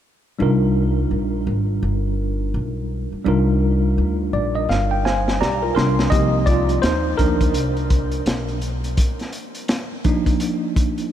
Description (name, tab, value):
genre	hip hop, jazz-hop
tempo	84 BPM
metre	4/4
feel	swing 61% on 16ths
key	C minor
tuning	A4 = 438 Hz
part	tine electric piano	accompaniment	0.4-11.1 s	F3 to C6	-21 LUFS	right 1 dB	overdrive, fast stereo tremolo
part	upright bass	bass	0.4-8.9 s	G1 to Eb2	-21 LUFS	equal	none
part	crunchy breakbeat drum kit	drums	4.7-11.1 s	hi-hat, kick drum, snare drum	-22 LUFS	equal	none
room	light reverb, small room ambience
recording	none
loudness	-18 LUFS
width	side -10 dB against mid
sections	0.4-6.1 A section; 6.1-11.1 B section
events	tine electric piano fill 4.0-6.1; drum fill 4.7-6.1; tine electric piano solo 6.1-11.1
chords	0.4 Cm11; 5.8 C9sus4; 6.1 Cm11